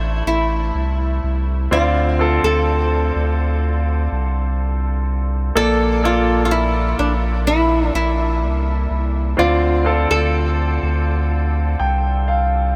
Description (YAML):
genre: pop ballad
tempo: 62 BPM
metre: 4/4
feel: straight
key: D minor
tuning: A4 = 440 Hz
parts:
  - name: clear concert grand piano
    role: accompaniment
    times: 0.0-12.8 s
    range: Bb2 to G5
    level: -24 LUFS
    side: equal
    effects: none
  - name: warm sub bass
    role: bass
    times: 0.0-12.8 s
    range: A1 to D2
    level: -21 LUFS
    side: equal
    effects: none
  - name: flamenco guitar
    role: melody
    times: 0.3-12.7 s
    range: D4 to A4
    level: -24 LUFS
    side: equal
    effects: lush chorus, diffuse ambient delay
room: moderate huge ambient reverb, RT60 9.1 s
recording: dreamy mix soaked in reverb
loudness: -18 LUFS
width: mono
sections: 0.0-12.8 A section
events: grand piano fill 11.3-12.8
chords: 0.0 Am; 1.7 Dm7; 5.6 Bbmaj7; 9.4 Dm7